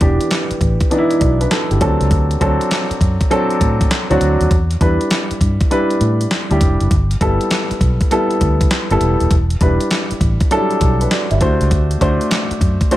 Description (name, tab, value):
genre	R&B, new jack swing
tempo	100 BPM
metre	4/4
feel	swing 66% on 16ths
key	E minor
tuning	A4 = 440 Hz
part	dark baby grand piano	accompaniment	0.0-13.0 s	E3 to E5	-17 LUFS	equal	none
part	vintage muted fingered electric bass	bass	0.0-12.8 s	D#1 to A2	-16 LUFS	equal	none
part	crisp 8-bit digital drum machine	drums	0.0-13.0 s	handclaps, hi-hat, kick drum, snare drum	-17 LUFS	equal	overdrive
room	digital ambience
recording	none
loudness	-13 LUFS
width	side -14 dB against mid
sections	0.0-13.0 A section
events	none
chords	0.0 Em7; 1.8 D7; 4.5 Em7; 6.9 G69; 9.3 Em7; 11.4 D7